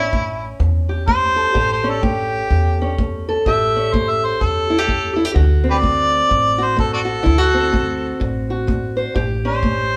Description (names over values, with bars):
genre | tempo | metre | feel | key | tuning
acoustic country blues, solo or duo | 126 BPM | 4/4 | swing 60% on 8ths | unclear | A4 = 440 Hz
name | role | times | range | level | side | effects
warm harmonica | melody | 0.0-10.0 s | D4 to E5 | -21 LUFS | equal | none
fingerpicked steel-string acoustic guitar | accompaniment | 0.0-10.0 s | A2 to C5 | -23 LUFS | equal | none
upright bass | bass | 0.0-10.0 s | A1 to E2 | -24 LUFS | equal | none
kick drum | drums | 0.1-9.8 s | none | -27 LUFS | equal | none
room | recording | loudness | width
moderate stone room reverb, RT60 1.1 s | band playing live in one room | -18 LUFS | mono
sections
0.0-10.0 A section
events
harmonica solo 0.0-10.0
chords
0.0 A7; 5.4 D7; 9.2 A7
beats
0.13 0.61 1.08 | 1.56 2.03 2.51 2.98 | 3.46 3.93 4.41 4.88 | 5.36 5.83 6.31 6.79 | 7.26 7.73 8.21 8.68 | 9.15 9.63